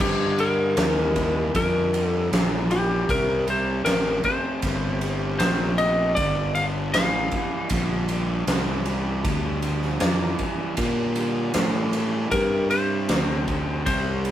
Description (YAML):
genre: blues rock power trio and southern rock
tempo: 78 BPM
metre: 4/4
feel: straight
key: G minor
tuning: A4 = 444 Hz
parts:
  - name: lightly driven lead guitar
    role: melody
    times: 0.0-14.3 s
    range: G4 to F5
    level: -25 LUFS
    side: left 2 dB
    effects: none
  - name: overdriven electric guitar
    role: riff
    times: 0.0-14.3 s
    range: G2 to A3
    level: -29 LUFS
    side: equal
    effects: none
  - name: fuzz fingered electric bass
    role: bass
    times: 0.0-14.3 s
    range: G1 to Bb2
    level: -26 LUFS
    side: equal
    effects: overdrive
  - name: big rock drum kit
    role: drums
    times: 0.0-14.3 s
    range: crash cymbal, kick drum, ride cymbal, snare drum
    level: -26 LUFS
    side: right 1 dB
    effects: none
room: moderate stone room reverb, RT60 1.2 s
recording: rough rehearsal-room recording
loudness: -21 LUFS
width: side -11 dB against mid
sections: 0.0-14.3 A section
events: none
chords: 0.0 Gm7; 3.1 C5; 6.2 Gm7; 12.3 C5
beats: | 0.00 0.78 1.55 2.32 | 3.09 3.86 4.63 5.40 | 6.17 6.94 7.71 8.48 | 9.25 10.02 10.79 11.56 | 12.33 13.10 13.87